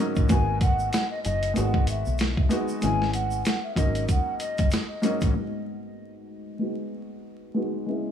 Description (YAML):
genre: hip hop, boom-bap hip-hop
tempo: 95 BPM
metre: 4/4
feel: swing 57% on 16ths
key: G# minor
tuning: A4 = 440 Hz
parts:
  - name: dark upright piano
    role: accompaniment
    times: 0.0-8.1 s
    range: G#2 to F#4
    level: -29 LUFS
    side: equal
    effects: cassette tape, high-pass filter, low-pass filter
  - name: deep dub fingered electric bass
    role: bass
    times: 0.2-5.3 s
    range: F#1 to B1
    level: -27 LUFS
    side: equal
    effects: none
  - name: boom bap sampler-style drum kit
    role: drums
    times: 0.2-5.3 s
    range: hi-hat, kick drum, snare drum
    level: -25 LUFS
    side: equal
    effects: none
  - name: tube shaker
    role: percussion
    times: 0.2-5.3 s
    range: none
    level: -45 LUFS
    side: right 8 dB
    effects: none
  - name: mellow hollow concert flute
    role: melody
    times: 0.3-4.7 s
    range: D#5 to G#5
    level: -30 LUFS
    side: left 1 dB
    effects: high-pass filter, low-pass filter, tape echo
room: little or no reverb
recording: vinyl crackle, small room ambience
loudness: -23 LUFS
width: side -9 dB against mid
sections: 0.0-5.4 A section; 5.4-8.1 B section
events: filter sweep on upright piano 5.4-8.1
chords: 0.3 G#m9; 1.6 G#m7; 2.8 E69/G#; 3.8 F#69; 5.4 G#m9; 6.6 G#m7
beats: | 0.30 0.93 1.56 2.19 | 2.83 3.46 4.09 4.72 | 5.35 5.98 6.62 7.25 | 7.88